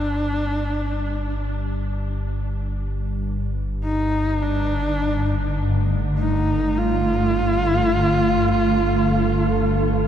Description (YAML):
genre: dark ambient drone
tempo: free time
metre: none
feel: none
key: unclear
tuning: A4 = 441 Hz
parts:
  - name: rich horsehead fiddle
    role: melody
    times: 0.0-10.1 s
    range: D4 to F4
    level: -23 LUFS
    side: right 1 dB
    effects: shimmer reverb, diffuse ambient delay
  - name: deep rumbling drone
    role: drone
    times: 0.0-10.1 s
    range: G1 to G2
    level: -24 LUFS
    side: equal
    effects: built-in reverb
  - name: granular cloud pad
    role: sustained chords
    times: 4.0-10.1 s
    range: G2 to A4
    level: -22 LUFS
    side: equal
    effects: built-in reverb
room: moderate huge ambient reverb, RT60 9.7 s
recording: dark, warm production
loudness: -19 LUFS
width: side -9 dB against mid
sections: 0.0-10.1 A section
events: none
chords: 0.0 Gsus2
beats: free time